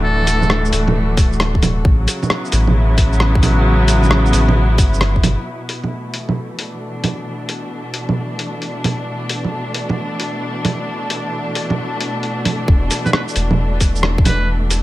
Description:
future garage; 133 BPM; 4/4; swing 67% on 16ths; A4 = 440 Hz
trumpet with metal mute; melody; 0.0-0.7, 13.1-14.5 s; A4 to B4; -24 LUFS; equal; digital delay
muted studio string section; sustained chords; 0.0-14.8 s; B2 to F#4; -21 LUFS; equal; sidechain pumping, low-pass filter
warm sub bass; bass; 0.0-5.4, 12.7-14.8 s; D1 to A1; -16 LUFS; equal; sidechain pumping
lo-fi sampler-style drum kit; drums; 0.3-14.8 s; bongos, hi-hat, rim click, shaker; -19 LUFS; right 1 dB; studio reverb
electronic kick drum; drums; 1.2-5.2, 12.7-14.2 s; -14 LUFS; equal; studio reverb
light reverb, digital ambience; -15 LUFS; side -16 dB against mid
0.0-5.5 A section; 5.5-12.7 B section; 12.7-14.8 A section
filter sweep on string section 5.5-12.7
0.0 D; 1.9 A13; 5.5 E5

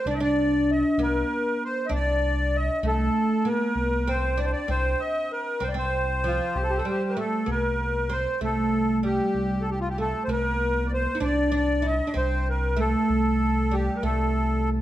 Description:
arabic; 64 BPM (dotted quarters); 6/8; straight; C maqam rast; A4 = 438 Hz
accordion; melody; 0.0-14.7 s; F4 to E5-50c; -26 LUFS; equal; light tremolo tuning
oud; second line; 0.0-14.7 s; F3 to E4-50c; -27 LUFS; right 1 dB
smooth synth bass; bass; 0.0-14.8 s; C2; -28 LUFS; equal
wet recital hall reverb, RT60 1.4 s; -22 LUFS; side -13 dB against mid
0.0-7.5 A section; 7.5-14.8 B section

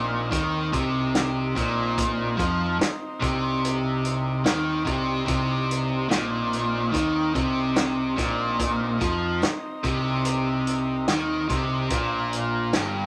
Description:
psychedelic rock; 72 BPM; 4/4; straight; C minor; A4 = 440 Hz
overdriven combo organ; sustained chords; 0.0-13.1 s; Bb3 to Bb4; -36 LUFS; equal
biting overdriven guitar; riff; 0.0-13.1 s; G2 to F3; -27 LUFS; equal
growling picked electric bass; bass; 0.0-13.1 s; G1 to F2; -33 LUFS; equal; overdrive
vintage drum kit; drums; 0.3-12.9 s; hi-hat, kick drum, snare drum; -29 LUFS; equal
tambourine; percussion; 1.2-12.9 s; barely audible
moderate studio ambience, RT60 0.5 s; -25 LUFS; mono
0.0-13.1 A section
0.0 Cm7; 11.9 Bb5

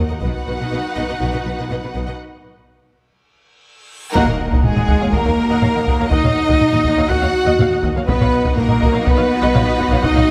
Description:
cinematic, epic orchestral film score; 122 BPM; 4/4; straight; Eb minor; A4 = 440 Hz
clear symphonic violin section; melody; 0.0-10.3 s; Ab4 to Gb5; -28 LUFS; equal
clear studio string section; sustained chords; 0.0-10.3 s; Eb4 to Gb5; -29 LUFS; equal
clear chamber cello section; bass; 0.0-10.3 s; Eb2 to Gb4; -27 LUFS; equal
rich symphonic double bass section; bass; 0.0-10.3 s; B1 to Eb2; -25 LUFS; equal
clear symphonic violin section; second line; 0.1-10.3 s; Ab4 to Gb5; -31 LUFS; equal
dark symphonic viola section; accompaniment; 0.1-10.3 s; Bb4 to Gb5; -28 LUFS; equal
warm French horn section; sustained chords; 0.2-10.3 s; Ab3 to Gb4; -22 LUFS; equal
taiko ensemble; drums; 0.2-1.2, 4.2-10.3 s; -21 LUFS; equal
reverse cymbal and impact; sound effects; 3.8-6.1 s; -33 LUFS; equal
mellow hollow concert flute; second line; 4.1-10.3 s; Ab5 to Gb6; -29 LUFS; equal
timpani; percussion; 4.2-4.8 s; Eb3; -30 LUFS; equal
moderate scoring stage reverb, RT60 1.9 s; -17 LUFS; mono
0.0-4.2 A section; 4.2-10.3 B section
break 2.2-4.2; drum fill 3.7-4.2; reverse cymbal 3.8-4.2; band accent 4.2-4.6; impact 4.2-6.1
0.2 B; 4.2 Ebm; 8.1 B

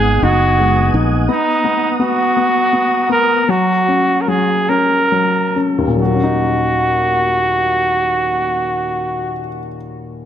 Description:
six-eight pop ballad; 43-57 BPM (dotted quarters); 6/8; straight; Eb minor; A4 = 440 Hz
clear flugelhorn; melody; 0.0-9.5 s; D#4 to Bb4; -15 LUFS; right 1 dB; tape echo
dark upright piano; accompaniment; 0.0-10.3 s; Eb2 to Eb4; -18 LUFS; left 3 dB
mellow tonewheel organ; sustained chords; 0.0-3.5 s; Cb4 to Eb6; -21 LUFS; right 2 dB; chorus vibrato, wide subtle chorus
fingered electric bass; bass; 0.0-1.3 s; Gb1 to Bb1; -16 LUFS; right 1 dB
moderate echo chamber reverb, RT60 1.4 s; -13 LUFS; side -10 dB against mid
0.0-6.0 A section; 6.0-10.3 B section
slowing down 1.3-6.0
0.0 Abm7; 1.3 Bmaj7; 3.5 Gb

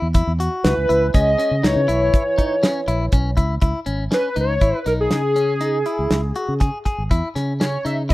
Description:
progressive instrumental, band music in an uneven meter; 121 BPM; 7/4; straight; C# minor; A4 = 442 Hz
clean electric guitar; arpeggios; 0.0-8.1 s; C#4 to G#4; -26 LUFS; left 2 dB
fingered electric bass; bass; 0.0-8.1 s; G#1 to C#3; -22 LUFS; equal
damped 70s drum kit; drums; 0.1-8.1 s; hi-hat, kick drum, snare drum; -19 LUFS; equal
hollow square lead; melody; 0.6-8.1 s; G#4 to E5; -20 LUFS; equal; chorus
trombone with cup mute; second line; 0.7-3.4 s; E3 to G#3; -28 LUFS; right 2 dB
studio reverb; rough home demo mix; -17 LUFS; side -18 dB against mid
0.0-3.6 A section; 3.6-8.1 B section
0.0 C#m

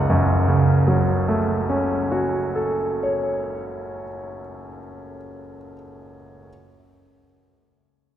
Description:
classical, romantic character piece for solo piano; 49 BPM (dotted quarters); 6/8; rubato; F# minor; A4 = 439 Hz
warm grand piano; solo; 0.0-6.5 s; F#1 to F#5; -20 LUFS; right 1 dB
wet church reverb, RT60 3.1 s; recorded in a church or concert hall; -19 LUFS; side -11 dB against mid
0.0-4.3 A section
0.0 F#m

